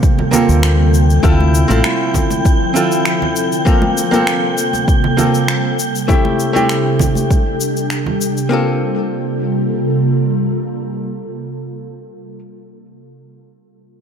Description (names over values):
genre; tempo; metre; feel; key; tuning
sunset chillout; 99 BPM; 4/4; straight; G dorian; A4 = 445 Hz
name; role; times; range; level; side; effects
archtop guitar, miked and amplified; accompaniment; 0.0-12.4 s; A3 to A4; -18 LUFS; moving between left 4 dB and right 3 dB; auto-pan, low-pass filter, digital delay
ethereal airy pad; sustained chords; 0.0-11.7 s; C3 to A4; -19 LUFS; right 1 dB; ensemble chorus, built-in reverb
electronic cabasa and finger snaps; drums; 0.0-8.5 s; none; -23 LUFS; left 2 dB; studio reverb
electronic kick drum; drums; 0.0-7.4 s; none; -14 LUFS; equal; overdrive, studio reverb
wind-like tuned noise texture; texture; 0.0-8.5 s; G5 to G6; -24 LUFS; equal; built-in reverb
congas; percussion; 0.2-8.2 s; none; -23 LUFS; right 3 dB; none
deep dub fingered electric bass; bass; 0.5-1.8 s; A1 to D2; -12 LUFS; equal; none
room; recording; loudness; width
moderate lush hall reverb, RT60 1.9 s, digital ambience; none; -12 LUFS; side -7 dB against mid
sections
0.0-8.5 A section; 8.5-10.9 B section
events
none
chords
0.0 Gm11; 1.2 Dm7; 3.7 Gm11; 5.8 D7sus4; 8.5 Gm11